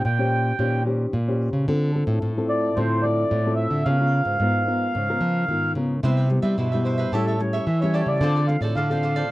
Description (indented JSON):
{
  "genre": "samba",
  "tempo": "110 BPM",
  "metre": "4/4",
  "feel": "straight",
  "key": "unclear",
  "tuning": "A4 = 440 Hz",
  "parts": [
    { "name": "mellow accordion", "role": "melody", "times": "0.0-9.3 s", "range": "A4 to G5", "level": "-25 LUFS", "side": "right 1 dB", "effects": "none" },
    { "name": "nylon-string guitar", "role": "accompaniment", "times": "0.0-9.3 s", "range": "G2 to C5", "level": "-27 LUFS", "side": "left 2 dB", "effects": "none" },
    { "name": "nylon-string guitar", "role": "bass", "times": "0.0-9.2 s", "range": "Ab2 to G3", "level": "-22 LUFS", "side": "equal", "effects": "none" },
    { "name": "cavaquinho", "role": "accompaniment", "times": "6.0-9.3 s", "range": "E4 to E5", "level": "-30 LUFS", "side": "right 4 dB", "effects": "none" }
  ],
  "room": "little or no reverb",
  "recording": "dry, close 1970s-style studio recording",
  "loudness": "-20 LUFS",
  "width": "side -17 dB against mid",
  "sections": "0.0-9.3 A section",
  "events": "none",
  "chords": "0.0 Eb6; 1.7 Dm7; 3.9 Db13; 6.0 Cmaj7; 7.1 A7; 8.2 Dm7",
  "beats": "0.05 0.60 1.14 | 1.69 2.23 2.77 3.32 | 3.86 4.41 4.95 5.50 | 6.04 6.58 7.13 7.67 | 8.22 8.76 9.30"
}